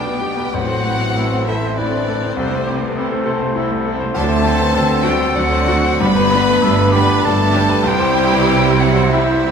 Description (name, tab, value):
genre	classical, romantic movement for piano and orchestra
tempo	98 BPM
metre	3/4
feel	uneven beats, rubato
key	G major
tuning	A4 = 440 Hz
part	clear grand piano	melody	0.0-9.5 s	A1 to C5	-19 LUFS	left 3 dB	none
part	rich chamber violin section	melody	0.0-9.5 s	C5 to B5	-24 LUFS	left 2 dB	none
part	clear chamber violin section	second line	0.0-9.5 s	C4 to B4	-26 LUFS	right 1 dB	none
part	hollow concert flute	second line	0.0-9.5 s	C5 to B5	-24 LUFS	left 1 dB	none
part	mellow oboe	second line	0.0-9.5 s	G4 to G5	-26 LUFS	equal	none
part	rich chamber viola section	accompaniment	0.0-9.5 s	F#3 to B4	-24 LUFS	right 2 dB	none
part	mellow French horn section	sustained chords	0.0-9.5 s	C3 to B3	-23 LUFS	left 2 dB	none
part	warm trombone section	sustained chords	0.0-9.5 s	E3 to E4	-24 LUFS	right 2 dB	none
part	clear studio double bass section	bass	0.0-9.5 s	G1 to D2	-22 LUFS	right 4 dB	none
part	rich studio cello section	bass	0.0-9.5 s	G2 to D3	-24 LUFS	right 2 dB	none
part	timpani	percussion	4.2-6.9 s	G2 to D3	-32 LUFS	right 1 dB	none
room	wet scoring stage reverb, RT60 1.8 s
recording	minimal, uncompressed stereo recording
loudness	-13 LUFS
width	side -6 dB against mid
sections	0.0-9.5 A section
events	none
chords	0.0 G/B; 0.5 Am; 2.4 Am/C; 4.2 D7; 6.0 G; 7.9 C